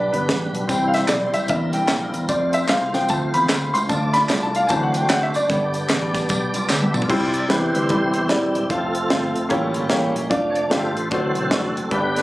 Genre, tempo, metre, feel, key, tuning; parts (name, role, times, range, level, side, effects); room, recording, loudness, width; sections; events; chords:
uptempo gospel; 150 BPM; 4/4; swing 62% on 8ths; C major; A4 = 440 Hz
clear upright piano; accompaniment; 0.0-12.2 s; G2 to C6; -21 LUFS; left 1 dB
mellow French horn section; sustained chords; 0.0-7.1 s; G3 to B4; -31 LUFS; equal
tonewheel organ; sustained chords; 0.0-12.2 s; D3 to E5; -25 LUFS; right 1 dB; slow rotary speaker, chorus vibrato
fingered electric bass; bass; 0.0-12.2 s; Eb1 to F2; -27 LUFS; equal
tight funk drum kit; drums; 0.1-12.2 s; crash cymbal, hi-hat, kick drum, snare drum, toms; -24 LUFS; equal
tambourine and handclaps; percussion; 0.7-7.0 s; -29 LUFS; equal
light reverb, small room ambience; recorded on a phone in the room, club reverb, compression; -18 LUFS; side -17 dB against mid
0.0-7.1 A section; 7.1-12.2 B section
upright piano solo 0.0-7.1; drum fill 6.7-7.1; tonewheel organ solo 7.1-12.2
0.0 G; 0.7 C; 1.5 C7; 2.3 F; 3.9 Dm; 4.7 D7; 5.5 G; 7.1 C; 8.7 F; 9.5 A7b9; 10.3 Dm/F; 11.1 D7